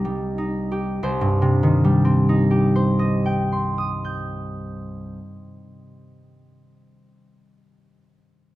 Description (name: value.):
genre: classical, solo harp piece.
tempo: 33 BPM (dotted quarters).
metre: 6/8.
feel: rubato.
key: C minor.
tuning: A4 = 440 Hz.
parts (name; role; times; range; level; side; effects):
concert harp; solo; 0.0-6.2 s; C2 to G6; -19 LUFS; equal; none.
room: moderate recital hall reverb, RT60 1.4 s.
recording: none.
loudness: -18 LUFS.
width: side -16 dB against mid.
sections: 0.0-1.0 A section; 1.0-4.7 B section.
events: slowing down 0.0-1.0.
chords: 0.0 Cm7; 1.0 Cm.